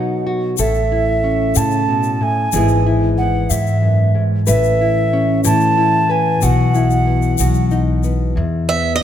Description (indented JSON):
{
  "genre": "acoustic folk duo or small band",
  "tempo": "62 BPM (dotted quarters)",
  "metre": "6/8",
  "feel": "straight",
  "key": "E major",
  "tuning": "A4 = 439 Hz",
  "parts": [
    { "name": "alto ocarina", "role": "second line", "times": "0.0-7.7 s", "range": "E5 to A5", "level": "-19 LUFS", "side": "right 4 dB", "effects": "none" },
    { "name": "nylon-string guitar", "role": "accompaniment", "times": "0.0-9.0 s", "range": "E2 to B4", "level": "-18 LUFS", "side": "left 3 dB", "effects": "none" },
    { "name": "upright bass", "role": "bass", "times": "0.0-9.0 s", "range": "G#1 to B2", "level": "-18 LUFS", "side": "equal", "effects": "none" },
    { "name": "egg shaker", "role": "percussion", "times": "0.6-8.1 s", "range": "none", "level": "-25 LUFS", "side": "left 10 dB", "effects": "none" },
    { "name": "picked swing-style acoustic guitar", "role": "melody", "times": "8.7-9.0 s", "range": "D#5 to E5", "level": "-16 LUFS", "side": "right 6 dB", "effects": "none" }
  ],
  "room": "moderate scoring stage reverb, RT60 1.9 s",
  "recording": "none",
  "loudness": "-13 LUFS",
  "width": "side -10 dB against mid",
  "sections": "0.0-8.4 A section",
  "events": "ocarina solo 0.0-8.4",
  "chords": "0.0 B; 0.6 A; 2.5 E/G#; 4.5 Aadd9; 6.4 Bsus4; 7.4 B; 8.4 E5"
}